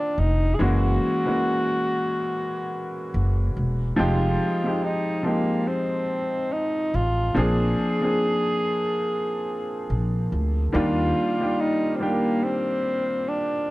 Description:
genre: lo-fi hip hop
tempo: 71 BPM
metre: 4/4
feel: swing 58% on 16ths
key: unclear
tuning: A4 = 440 Hz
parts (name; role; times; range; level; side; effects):
- dark tenor saxophone; melody; 0.0-13.7 s; Bb3 to Ab4; -26 LUFS; equal; low-pass filter
- clear upright piano; accompaniment; 0.0-13.7 s; D3 to Ab4; -26 LUFS; equal; cassette tape, low-pass filter
- upright bass; bass; 0.2-11.1 s; E1 to Eb2; -23 LUFS; equal; none
room: moderate small room reverb, RT60 0.6 s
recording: dark, warm production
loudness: -21 LUFS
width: side -19 dB against mid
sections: 0.0-13.7 A section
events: none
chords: 0.0 Cm7; 0.6 F#9; 4.0 Fm7; 7.4 Bb7; 10.7 Ebmaj9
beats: | 0.59 1.44 2.28 3.13 | 3.97 4.82 5.66 6.51 | 7.35 8.20 9.04 9.89 | 10.73 11.58 12.42 13.27

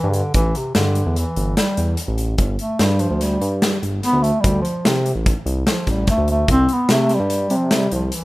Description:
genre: progressive instrumental, band music in an uneven meter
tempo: 147 BPM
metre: 5/4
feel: straight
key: C major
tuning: A4 = 441 Hz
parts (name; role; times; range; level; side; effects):
- breathy bass clarinet; melody; 0.0-8.2 s; C3 to C4; -20 LUFS; equal; none
- smooth synth bass; bass; 0.0-8.1 s; G1 to C3; -20 LUFS; equal; none
- big rock drum kit; drums; 0.1-8.2 s; hi-hat, kick drum, snare drum; -21 LUFS; equal; none
room: small room ambience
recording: rough home demo mix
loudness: -16 LUFS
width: side -19 dB against mid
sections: 0.0-8.2 A section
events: bass clarinet solo 0.0-8.2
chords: 0.3 A5; 2.4 G5; 4.4 Dm7; 6.5 C5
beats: | 0.35 0.76 1.17 1.57 1.98 | 2.39 2.80 3.21 3.62 4.03 | 4.44 4.85 5.26 5.67 6.08 | 6.49 6.90 7.30 7.71 8.12

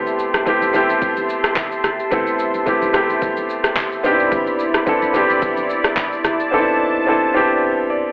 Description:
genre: amapiano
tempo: 109 BPM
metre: 4/4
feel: swing 55% on 16ths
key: A minor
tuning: A4 = 439 Hz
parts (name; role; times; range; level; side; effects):
- clear baby grand piano; accompaniment; 0.0-8.1 s; A3 to D5; -20 LUFS; equal; none
- warm analog pad; sustained chords; 0.0-8.1 s; E4 to C6; -25 LUFS; equal; chorus
- deep house drum kit; drums; 0.1-6.5 s; handclaps, kick drum, rim click, shaker; -24 LUFS; equal; vintage 12-bit sampler grit
- congas; percussion; 0.3-6.4 s; none; -39 LUFS; equal; none
room: moderate lush hall reverb, RT60 2.2 s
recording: telephone sound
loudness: -18 LUFS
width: mono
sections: 0.0-8.1 A section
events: grand piano fill 7.6-8.1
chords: 0.0 Am7; 4.0 Cmaj9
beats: 0.47 1.02 1.57 | 2.12 2.67 3.22 3.77 | 4.32 4.87 5.42 5.97 | 6.52 7.07 7.62

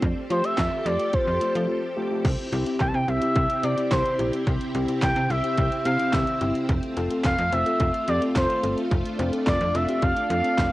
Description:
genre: synth-pop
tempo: 108 BPM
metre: 4/4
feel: straight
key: C major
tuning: A4 = 440 Hz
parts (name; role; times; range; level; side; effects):
- mellow tine electric piano; accompaniment; 0.0-10.7 s; A3 to C5; -28 LUFS; left 2 dB; none
- string machine, violins; sustained chords; 0.0-10.7 s; C3 to A4; -31 LUFS; right 1 dB; ensemble chorus
- slap-like FM bass; bass; 0.0-10.7 s; F1 to F3; -27 LUFS; equal; tube saturation
- pop drum kit; drums; 0.0-10.7 s; crash cymbal, handclaps, hi-hat, kick drum, snare drum; -27 LUFS; equal; cassette tape
- expressive portamento lead; melody; 0.3-10.7 s; C5 to A5; -26 LUFS; equal; chorus, tape echo
room: moderate small room reverb, RT60 0.6 s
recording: home recording on cassette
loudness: -21 LUFS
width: side -17 dB against mid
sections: 0.0-2.2 A section; 2.2-10.7 B section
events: break 1.7-2.2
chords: 0.0 Fadd9; 2.2 C; 6.7 F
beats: | 0.03 0.58 1.14 1.69 | 2.25 2.80 3.36 3.91 | 4.47 5.03 5.58 6.14 | 6.69 7.25 7.80 8.36 | 8.91 9.47 10.03 10.58

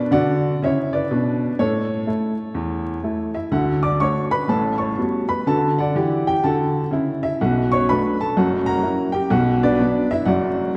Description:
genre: jazz, stride piano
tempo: 124 BPM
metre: 4/4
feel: swing 64% on 8ths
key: D major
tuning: A4 = 439 Hz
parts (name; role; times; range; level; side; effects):
- clear upright piano; solo; 0.0-10.8 s; F#1 to D6; -20 LUFS; equal; none
room: wet concert hall reverb, RT60 2.0 s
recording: recorded in a church or concert hall, vinyl crackle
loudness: -20 LUFS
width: mono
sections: 0.0-3.5 A section; 3.5-10.8 B section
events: none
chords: 0.0 Bm; 1.6 A; 3.5 D; 4.5 A13; 5.5 D; 7.4 Bm7; 8.3 F#7; 9.3 Bm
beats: 0.13 0.61 1.10 | 1.58 2.06 2.55 3.03 | 3.52 4.00 4.48 4.97 | 5.45 5.93 6.42 6.90 | 7.38 7.86 8.35 8.83 | 9.31 9.79 10.27 10.75

